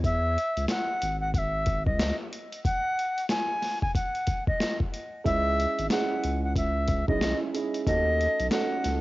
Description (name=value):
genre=hip hop, boom-bap hip-hop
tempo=92 BPM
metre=4/4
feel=swing 60% on 16ths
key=C# minor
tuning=A4 = 441 Hz
part: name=bright reedy wooden flute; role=melody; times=0.0-9.0 s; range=D#5 to G#5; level=-28 LUFS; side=equal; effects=high-pass filter, low-pass filter, cassette tape, tape echo
part: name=saturated sub bass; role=bass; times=0.0-9.0 s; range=G#1 to E2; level=-29 LUFS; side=left 1 dB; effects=tube saturation
part: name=boom bap sampler-style drum kit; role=drums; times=0.0-9.0 s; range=hi-hat, kick drum, snare drum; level=-29 LUFS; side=left 1 dB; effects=vintage 12-bit sampler grit, cassette tape
part: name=dark upright piano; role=accompaniment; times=5.2-9.0 s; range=G#3 to A4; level=-30 LUFS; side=right 5 dB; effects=high-pass filter, low-pass filter, cassette tape
room=little or no reverb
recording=home recording on cassette, nothing above 7.5 kHz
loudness=-25 LUFS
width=side -18 dB against mid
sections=0.0-9.0 A section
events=break 0.0-5.3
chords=0.0 C#m; 2.6 N.C.; 5.3 C#madd9; 7.9 D#m7b5